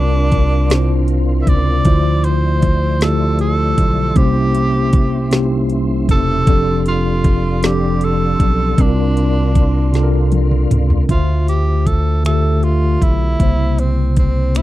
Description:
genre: slow six-eight R&B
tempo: 52 BPM (dotted quarters)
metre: 6/8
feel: straight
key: D minor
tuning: A4 = 441 Hz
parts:
  - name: breathy tenor saxophone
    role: melody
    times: 0.0-14.6 s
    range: C4 to E5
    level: -21 LUFS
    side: right 2 dB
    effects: slapback echo
  - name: mellow tine electric piano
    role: accompaniment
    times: 0.0-14.6 s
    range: C3 to E5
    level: -18 LUFS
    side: left 1 dB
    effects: medium stereo tremolo
  - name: mellow tonewheel organ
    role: sustained chords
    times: 0.0-11.1 s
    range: F3 to C6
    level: -28 LUFS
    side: equal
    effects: chorus vibrato, slow rotary speaker
  - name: smooth synth bass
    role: bass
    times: 0.0-14.6 s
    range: E1 to D2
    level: -16 LUFS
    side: equal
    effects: none
  - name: smooth R&B drum kit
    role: drums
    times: 0.3-14.6 s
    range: finger snaps, hi-hat, kick drum, snare drum, toms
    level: -15 LUFS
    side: equal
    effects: none
room: little or no reverb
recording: dry, close 1970s-style studio recording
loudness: -12 LUFS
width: side -15 dB against mid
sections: 0.0-11.1 A section; 11.1-14.6 B section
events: drum fill 9.9-11.1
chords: 0.0 C9sus4; 1.9 Dm9; 4.2 C7b9; 6.5 F6; 8.8 C9sus4; 11.1 Dm9; 13.4 C7b9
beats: 0.70 | 1.86 3.01 | 4.16 5.32 | 6.47 7.62 | 8.78 9.93 | 11.09 12.24 | 13.39 14.55

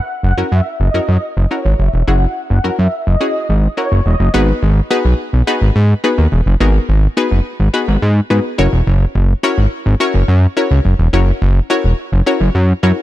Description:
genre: dance-pop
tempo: 106 BPM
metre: 4/4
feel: straight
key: G# minor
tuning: A4 = 440 Hz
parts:
  - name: analog pluck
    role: accompaniment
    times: 0.0-13.0 s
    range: B3 to C#5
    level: -18 LUFS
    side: left 2 dB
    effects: chorus
  - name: filtered supersaw swell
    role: melody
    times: 0.2-4.2 s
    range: C#5 to F#5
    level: -22 LUFS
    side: equal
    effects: dub echo
  - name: fat analog bass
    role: bass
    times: 0.2-12.9 s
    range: E1 to G#2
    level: -11 LUFS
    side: equal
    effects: none
room: little or no reverb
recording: dark, warm production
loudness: -12 LUFS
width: side -14 dB against mid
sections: 0.0-4.3 A section; 4.3-13.0 B section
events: none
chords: 0.0 F#7; 4.3 G#m7; 8.6 F#7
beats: 0.38 0.94 1.51 | 2.08 2.64 3.21 3.77 | 4.34 4.91 5.47 6.04 | 6.61 7.17 7.74 8.30 | 8.87 9.44 10.00 10.57 | 11.13 11.70 12.27 12.83

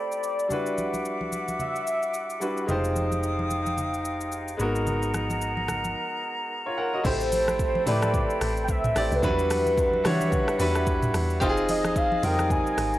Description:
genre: amapiano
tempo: 110 BPM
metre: 4/4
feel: swing 58% on 16ths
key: unclear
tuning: A4 = 438 Hz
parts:
  - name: warm velvety synth lead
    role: melody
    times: 0.0-2.4, 7.1-13.0 s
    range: B4 to Ab5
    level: -27 LUFS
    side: equal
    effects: chorus, analog delay
  - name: bright grand piano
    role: accompaniment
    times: 0.0-13.0 s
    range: F#3 to F#5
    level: -28 LUFS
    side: equal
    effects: none
  - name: breathy flute section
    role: sustained chords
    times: 0.0-13.0 s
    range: C4 to Eb6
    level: -32 LUFS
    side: equal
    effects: sidechain pumping
  - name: afro-pop drum kit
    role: drums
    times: 0.1-13.0 s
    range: crash cymbal, hi-hat, kick drum, rim click, shaker, toms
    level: -30 LUFS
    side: equal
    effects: none
  - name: congas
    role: percussion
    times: 0.5-12.7 s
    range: none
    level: -36 LUFS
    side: equal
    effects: none
  - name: hollow-body short-scale fingered electric bass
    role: bass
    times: 2.7-5.9 s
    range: F1 to G#1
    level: -31 LUFS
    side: equal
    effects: none
  - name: deep log drum bass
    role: bass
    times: 7.0-13.0 s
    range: F1 to E3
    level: -29 LUFS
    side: equal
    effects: none
room: digital ambience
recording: dry, gritty hardware recording, transformer saturation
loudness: -23 LUFS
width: side -15 dB against mid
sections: 0.0-7.0 A section; 7.0-13.0 B section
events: drop 7.0-13.0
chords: 0.0 Am9; 0.5 Em9; 2.7 Fm9; 4.6 G#m9; 7.0 Am9; 9.2 Em9; 11.4 Fm9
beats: | 0.50 1.05 1.59 2.14 | 2.69 3.23 3.78 4.32 | 4.87 5.41 5.96 6.50 | 7.05 7.59 8.14 8.69 | 9.23 9.78 10.32 10.87 | 11.41 11.96 12.50

